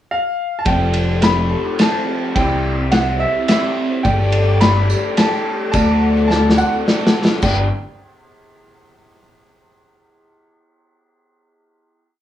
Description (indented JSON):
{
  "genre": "folk rock and heartland rock",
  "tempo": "106 BPM",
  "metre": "3/4",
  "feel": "straight",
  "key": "G major",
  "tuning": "A4 = 439 Hz",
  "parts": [
    { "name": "bright grand piano", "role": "melody", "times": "0.1-7.7 s", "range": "E5 to B5", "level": "-21 LUFS", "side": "right 1 dB", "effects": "plate reverb" },
    { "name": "picked twelve-string acoustic guitar", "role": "accompaniment", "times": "0.7-7.7 s", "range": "C3 to C5", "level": "-24 LUFS", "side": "left 5 dB", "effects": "none" },
    { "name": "raw garage guitar", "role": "riff", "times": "0.7-7.7 s", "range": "F2 to G4", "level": "-23 LUFS", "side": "right 2 dB", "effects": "overdrive, phaser" },
    { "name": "fingered electric bass", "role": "bass", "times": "0.7-7.7 s", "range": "F1 to D2", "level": "-17 LUFS", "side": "equal", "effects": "none" },
    { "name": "loose indie drum kit", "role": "drums", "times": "0.7-7.6 s", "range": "crash cymbal, kick drum, ride cymbal, snare drum", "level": "-19 LUFS", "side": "left 1 dB", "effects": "none" },
    { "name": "mellow tonewheel organ", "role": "sustained chords", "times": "4.0-7.7 s", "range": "G3 to D6", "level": "-29 LUFS", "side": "left 2 dB", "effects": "slow rotary speaker, chorus vibrato" },
    { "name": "tambourine", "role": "percussion", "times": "4.1-7.7 s", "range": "none", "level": "-36 LUFS", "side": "right 3 dB", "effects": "none" }
  ],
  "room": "moderate studio reverb, RT60 0.7 s",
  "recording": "worn, warbling old tape, cassette tape, warbly pitch drift, small room reverb",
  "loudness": "-14 LUFS",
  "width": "side -12 dB against mid",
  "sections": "0.0-0.7 pickup bar; 0.7-7.4 pre-chorus; 7.4-9.1 final chord",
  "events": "drum fill 6.3-7.4",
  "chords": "0.0 N.C.; 0.7 Fadd9; 2.4 C; 4.1 Gsus2; 5.7 D; 7.4 G",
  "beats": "0.10 | 0.66 1.23 1.79 | 2.36 2.92 3.49 | 4.05 4.62 5.18 | 5.75 6.31 6.87 | 7.44"
}